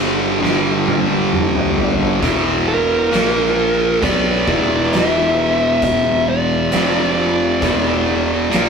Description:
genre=stoner and doom metal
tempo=67 BPM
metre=4/4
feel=straight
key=E minor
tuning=A4 = 436 Hz
part: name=fuzz guitar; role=riff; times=0.0-8.7 s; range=E2 to B3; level=-16 LUFS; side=equal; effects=distortion
part: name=fuzz fingered electric bass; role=bass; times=0.0-8.7 s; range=E1 to B1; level=-26 LUFS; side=equal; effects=overdrive
part: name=oversized low-tuned drum kit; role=drums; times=0.4-8.7 s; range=hi-hat, kick drum, snare drum, toms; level=-21 LUFS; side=equal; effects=none
part: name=fuzz lead guitar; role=melody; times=2.7-8.7 s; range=A#4 to E5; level=-18 LUFS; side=right 2 dB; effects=distortion
room=moderate studio reverb, RT60 0.6 s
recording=rough rehearsal-room recording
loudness=-14 LUFS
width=side -6 dB against mid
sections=0.0-2.2 A section; 2.2-8.7 B section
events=drum fill 0.4-2.2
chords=0.0 G5; 2.2 E5; 3.1 A#5; 4.0 E5; 6.7 F5; 7.6 E5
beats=0.42 1.32 | 2.22 3.12 4.02 4.92 | 5.82 6.72 7.62 8.52

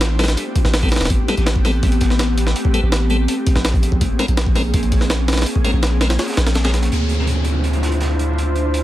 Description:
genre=drum and bass, jungle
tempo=165 BPM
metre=4/4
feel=straight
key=unclear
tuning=A4 = 440 Hz
part: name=ethereal airy pad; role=sustained chords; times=0.0-8.8 s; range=A3 to C5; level=-23 LUFS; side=left 1 dB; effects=ensemble chorus, built-in reverb
part: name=long sustained 808-style bass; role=bass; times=0.0-8.8 s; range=E1 to D2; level=-18 LUFS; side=equal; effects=none
part: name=crunchy breakbeat drum kit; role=drums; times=0.0-8.8 s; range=hi-hat, snare drum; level=-32 LUFS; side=right 2 dB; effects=high-pass filter on hats, small room ambience, high-pass filter on snare, high-pass filter on room
part: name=jungle sampler-style drum kit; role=drums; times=0.0-6.9 s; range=hi-hat, kick drum, snare drum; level=-18 LUFS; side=equal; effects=small room ambience
part: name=tonewheel organ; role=stabs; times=0.2-6.7 s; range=G3 to Bb4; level=-26 LUFS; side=left 2 dB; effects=overdrive, stopped rotary speaker, dub echo
part: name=downlifter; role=sound effects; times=6.9-8.8 s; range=none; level=-26 LUFS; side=equal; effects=none
room=light reverb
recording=dense, heavily limited modern master, vinyl crackle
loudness=-15 LUFS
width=side -14 dB against mid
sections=0.0-6.9 A section; 6.9-8.8 B section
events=none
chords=0.0 Am9; 3.3 Bbm9; 6.9 Dm9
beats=0.01 0.37 0.74 | 1.10 1.47 1.83 2.19 | 2.56 2.92 3.28 3.65 | 4.01 4.37 4.74 5.10 | 5.46 5.83 6.19 6.56 | 6.92 7.28 7.65 8.01 | 8.37 8.74

